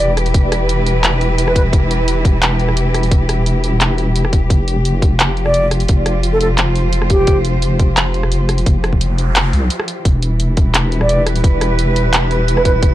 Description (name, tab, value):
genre	half-time drum and bass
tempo	173 BPM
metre	4/4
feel	half-time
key	E phrygian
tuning	A4 = 440 Hz
part	hollow concert flute	melody	0.0-1.6, 5.5-7.4, 11.0-12.7 s	G4 to D5	-19 LUFS	right 1 dB	tape echo
part	warm studio cello section	sustained chords	0.0-12.9 s	E3 to C5	-20 LUFS	equal	sidechain pumping
part	deep soft wobble bass	bass	0.0-12.9 s	E1 to C2	-16 LUFS	equal	chorus
part	drum and bass drum kit	drums	0.0-12.9 s	handclaps, hi-hat, rim click	-18 LUFS	equal	none
part	sub drop and noise sweep	sound effects	0.0-0.3, 9.0-10.1 s	none	-30 LUFS	right 1 dB	none
part	electronic kick drum	drums	0.3-12.9 s	none	-13 LUFS	equal	none
part	metallic inharmonic drone	texture	10.7-12.9 s	B4	-24 LUFS	right 3 dB	chorus, built-in reverb
room	little or no reverb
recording	dry, gritty hardware recording, transformer saturation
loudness	-12 LUFS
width	side -14 dB against mid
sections	0.0-12.9 A section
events	impact 0.0-0.3; noise sweep 9.0-10.1; break 9.7-10.1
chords	0.0 Em; 4.5 Fsus2; 10.1 Em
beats	| 0.34 0.69 1.03 1.38 | 1.73 2.08 2.42 2.77 | 3.12 3.46 3.81 4.16 | 4.50 4.85 5.20 5.54 | 5.89 6.24 6.58 6.93 | 7.28 7.62 7.97 8.32 | 8.66 9.01 9.36 9.71 | 10.05 10.40 10.75 11.09 | 11.44 11.79 12.13 12.48 | 12.83